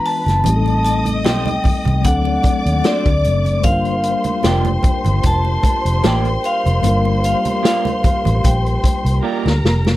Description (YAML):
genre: lush 1970s-style soul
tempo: 75 BPM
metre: 4/4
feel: swing 54% on 16ths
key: G minor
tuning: A4 = 438 Hz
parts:
  - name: vibraphone with hard mallets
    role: melody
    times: 0.0-9.2 s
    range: D5 to A5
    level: -20 LUFS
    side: left 1 dB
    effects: none
  - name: dark symphonic string section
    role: second line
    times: 0.0-10.0 s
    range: Bb4 to Eb6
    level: -25 LUFS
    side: equal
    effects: none
  - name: mellow tine electric piano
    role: accompaniment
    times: 0.0-10.0 s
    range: E3 to Bb4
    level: -23 LUFS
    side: left 3 dB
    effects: medium stereo tremolo
  - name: vintage drum kit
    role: drums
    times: 0.1-10.0 s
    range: hi-hat, kick drum, snare drum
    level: -18 LUFS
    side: equal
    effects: none
  - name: vintage muted fingered electric bass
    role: bass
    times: 0.3-10.0 s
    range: F1 to Eb2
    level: -17 LUFS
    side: equal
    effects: none
  - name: congas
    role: percussion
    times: 0.3-10.0 s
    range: none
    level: -26 LUFS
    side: right 4 dB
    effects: none
  - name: electric guitar through a small old amp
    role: riff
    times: 1.3-9.5 s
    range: A3 to D5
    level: -23 LUFS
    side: right 9 dB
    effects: none
  - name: warm French horn section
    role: sustained chords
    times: 3.6-10.0 s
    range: G3 to Bb4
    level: -28 LUFS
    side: right 3 dB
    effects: none
room: little or no reverb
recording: dry, close 1970s-style studio recording, lossy compression artefacts, faint mains hum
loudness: -14 LUFS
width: side -16 dB against mid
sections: 0.0-10.0 A section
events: drum fill 9.2-10.0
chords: 0.4 Am7b5; 2.0 D7; 3.6 Gm7